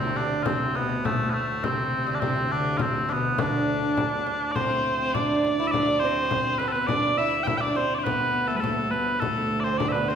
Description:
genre	medieval dance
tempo	103 BPM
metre	2/4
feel	straight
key	unclear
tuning	A4 = 440 Hz
part	mellow small bagpipes	melody	0.0-10.2 s	A3 to G5	-25 LUFS	equal	none
part	lute	second line	0.0-10.2 s	A2 to E4	-30 LUFS	right 6 dB	none
part	rich viola da gamba	second line	0.0-10.2 s	A2 to E4	-31 LUFS	left 3 dB	none
part	hand-pumped harmonium	drone	0.0-10.2 s	D2 to A2	-34 LUFS	right 1 dB	none
part	frame drum	percussion	0.2-10.2 s	none	-31 LUFS	left 2 dB	none
room	wet recital hall reverb, RT60 1.5 s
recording	recorded in a church or concert hall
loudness	-22 LUFS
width	side -8 dB against mid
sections	0.0-4.6 A section; 4.6-10.2 B section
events	none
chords	none

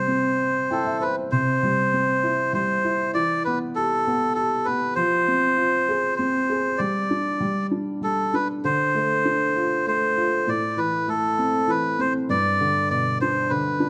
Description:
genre	children's music, lullaby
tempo	99 BPM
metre	3/4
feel	straight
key	C major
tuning	A4 = 440 Hz
part	melodica	melody	0.0-13.9 s	A4 to D5	-24 LUFS	equal	none
part	felt-muted upright piano	accompaniment	0.0-13.9 s	G2 to G5	-27 LUFS	equal	none
room	moderate recital hall reverb, RT60 1.5 s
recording	none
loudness	-23 LUFS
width	mono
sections	0.0-1.3 A section; 1.3-13.9 A section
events	felt piano fill 0.4-1.3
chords	0.0 C; 3.2 Em; 5.0 Fm; 6.8 G5; 8.6 Dm; 10.5 Am; 12.3 G

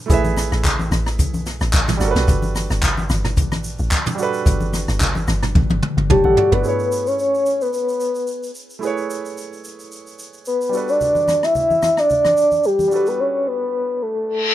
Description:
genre	amapiano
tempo	110 BPM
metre	4/4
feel	swing 55% on 16ths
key	A major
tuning	A4 = 441 Hz
part	warm grand piano	accompaniment	0.0-14.5 s	G3 to A5	-26 LUFS	right 6 dB	plate reverb
part	deep log drum bass	bass	0.1-6.6 s	F#1 to B1	-21 LUFS	equal	none
part	jazz brush drum kit	drums	0.1-13.2 s	handclaps, hi-hat, kick drum, rim click, shaker, snare drum, toms	-21 LUFS	equal	none
part	congas	percussion	0.1-6.4, 11.0-12.9 s	none	-27 LUFS	left 1 dB	none
part	soft octave-layered synth lead	melody	6.1-14.5 s	G4 to E5	-16 LUFS	left 1 dB	chorus, tremolo, plate reverb, digital delay
part	reverse cymbal	sound effects	14.4-14.5 s	none	-17 LUFS	left 4 dB	none
room	light reverb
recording	rough home demo mix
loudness	-16 LUFS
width	side -13 dB against mid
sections	0.0-6.6 A section; 6.6-14.5 B section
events	drop 0.0-6.6; drum fill 5.6-6.6; break 13.2-14.5; reverse cymbal 14.4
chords	0.0 Amaj9; 2.0 Gmaj9; 6.6 Amaj9; 10.7 Gmaj9

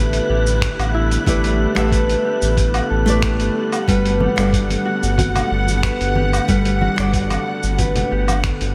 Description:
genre	sunset chillout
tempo	92 BPM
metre	4/4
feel	straight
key	G major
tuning	A4 = 440 Hz
part	nylon-string guitar	accompaniment	0.0-8.7 s	G3 to F#5	-25 LUFS	equal	tape echo, slapback echo
part	warm studio string section	sustained chords	0.0-8.7 s	D3 to F#5	-26 LUFS	equal	none
part	concert harp	arpeggios	0.0-8.7 s	E4 to B4	-26 LUFS	equal	tape echo, slapback echo
part	round analog bass	bass	0.0-8.7 s	G1 to A1	-22 LUFS	equal	none
part	wind-like tuned noise texture	texture	0.0-8.7 s	F#6	-33 LUFS	equal	built-in reverb
part	dusty soul sampler-style drum kit	drums	0.1-8.7 s	finger snaps, hi-hat, shaker, woodblock	-28 LUFS	equal	none
part	electronic kick drum	drums	0.6-8.6 s	none	-24 LUFS	equal	none
part	congas	percussion	4.2-8.4 s	none	-29 LUFS	equal	none
room	moderate lush hall reverb, RT60 2.6 s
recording	big arena sound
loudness	-18 LUFS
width	mono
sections	0.0-8.7 A section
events	none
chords	0.0 Gmaj9

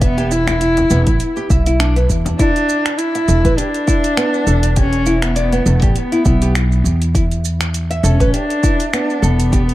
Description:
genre	organic downtempo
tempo	101 BPM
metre	4/4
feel	swing 55% on 16ths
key	E dorian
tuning	A4 = 442 Hz
part	warm cello	melody	0.0-9.7 s	A3 to E4	-18 LUFS	equal	analog delay
part	nylon-string guitar	arpeggios	0.0-9.6 s	B3 to E5	-21 LUFS	equal	analog delay
part	upright bass	bass	0.0-9.7 s	E1 to E2	-16 LUFS	equal	none
part	deep house drum kit	drums	0.0-9.7 s	finger snaps, hi-hat, shaker	-24 LUFS	right 1 dB	none
part	electronic kick drum	drums	0.0-9.7 s	none	-16 LUFS	equal	none
part	frame drum	percussion	0.5-2.4 s	none	-29 LUFS	left 2 dB	analog delay
room	light reverb, small room ambience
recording	echo-heavy mix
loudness	-13 LUFS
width	side -16 dB against mid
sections	0.0-2.4 A section; 2.4-9.7 B section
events	none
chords	0.0 E5; 2.4 E7(no3)

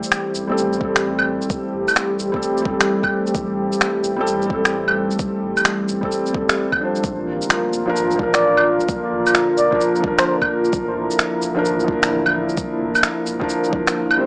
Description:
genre	future garage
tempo	130 BPM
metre	4/4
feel	swing 64% on 16ths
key	A phrygian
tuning	A4 = 442 Hz
part	felt-muted upright piano	accompaniment	0.0-14.3 s	F3 to C5	-22 LUFS	equal	sidechain pumping, tape echo
part	warbly tape-like pad	sustained chords	0.0-14.3 s	D3 to Bb4	-21 LUFS	equal	chorus, built-in reverb, sidechain pumping
part	warm sub bass	bass	0.0-13.9 s	E1 to A1	-36 LUFS	equal	tube saturation, sidechain pumping
part	electronic shaker, finger snaps and claves	drums	0.0-14.2 s	none	-19 LUFS	equal	small room ambience
part	electronic kick drum	drums	0.8-13.8 s	none	-26 LUFS	equal	small room ambience
part	trumpet with bucket mute	melody	8.3-10.4 s	C5 to D5	-20 LUFS	equal	analog delay
room	moderate recital hall reverb, RT60 1.7 s, digital ambience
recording	dry, gritty hardware recording, cassette tape, small speaker sound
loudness	-16 LUFS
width	side -28 dB against mid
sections	0.0-14.3 A section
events	kick drops out 14.0-14.3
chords	0.0 Am7; 7.0 Bb

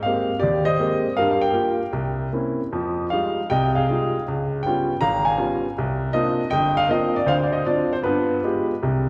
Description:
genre	solo jazz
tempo	158 BPM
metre	4/4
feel	swing 66% on 8ths, rubato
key	C minor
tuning	A4 = 441 Hz
part	clear baby grand piano	solo	0.0-9.1 s	G1 to Bb5	-22 LUFS	equal	none
room	wet scoring stage reverb, RT60 1.9 s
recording	heard from further back in the room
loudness	-22 LUFS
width	mono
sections	0.0-8.8 A section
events	none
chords	0.0 Abmaj9; 1.2 Gm7; 1.9 C7b9; 2.7 Fm9; 4.3 Db7#11; 5.8 Cm11; 7.3 Dm7; 8.0 G7b9

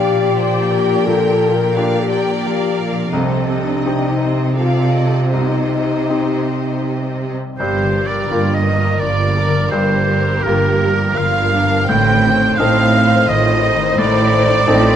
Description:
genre	cinematic, emotional film score for orchestra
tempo	77-88 BPM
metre	3/4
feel	rubato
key	G minor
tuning	A4 = 440 Hz
part	warm symphonic violin section	second line	0.0-15.0 s	Bb4 to G5	-23 LUFS	left 1 dB	none
part	bright baby grand piano	accompaniment	0.0-15.0 s	C2 to Bb4	-24 LUFS	left 2 dB	none
part	warm symphonic viola section	accompaniment	0.0-15.0 s	Eb3 to D5	-26 LUFS	right 2 dB	none
part	warm French horn section	sustained chords	0.0-15.0 s	Eb3 to C5	-21 LUFS	left 4 dB	none
part	concert harp	arpeggios	0.0-15.0 s	G2 to D5	-24 LUFS	left 7 dB	none
part	rich symphonic cello section	bass	0.0-15.0 s	G2 to C3	-19 LUFS	right 3 dB	none
part	clear oboe	second line	7.6-15.0 s	Bb4 to G5	-18 LUFS	right 2 dB	none
part	warm symphonic double bass section	bass	7.6-15.0 s	G1 to A1	-20 LUFS	right 4 dB	none
part	warm symphonic violin section	melody	8.0-15.0 s	Bb4 to C5	-26 LUFS	left 2 dB	none
room	moderate concert hall reverb, RT60 2.4 s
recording	close, detailed microphones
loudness	-13 LUFS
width	side -9 dB against mid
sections	0.0-7.6 A section; 7.6-15.0 A section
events	none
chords	0.0 Gm7/Bb; 3.2 Cm; 7.6 Gm7; 11.9 Adim

